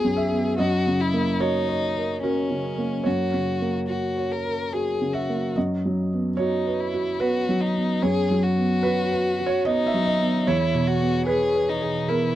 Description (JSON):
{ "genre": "neoclassical piano and strings", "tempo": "73 BPM", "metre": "3/4", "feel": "rubato", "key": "B major", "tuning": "A4 = 440 Hz", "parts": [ { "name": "rich violin", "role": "melody", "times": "0.0-12.4 s", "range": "C#4 to A#4", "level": "-26 LUFS", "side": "left 4 dB", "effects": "none" }, { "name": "felt-muted upright piano", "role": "accompaniment", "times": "0.0-12.4 s", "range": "B1 to E5", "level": "-22 LUFS", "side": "right 2 dB", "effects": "none" } ], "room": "wet booth ambience, RT60 0.2 s", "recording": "dry, close 1970s-style studio recording", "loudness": "-21 LUFS", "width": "side -13 dB against mid", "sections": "0.0-12.4 A section", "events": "none", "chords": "0.0 B5; 0.6 F#; 5.6 B/F#; 10.5 E" }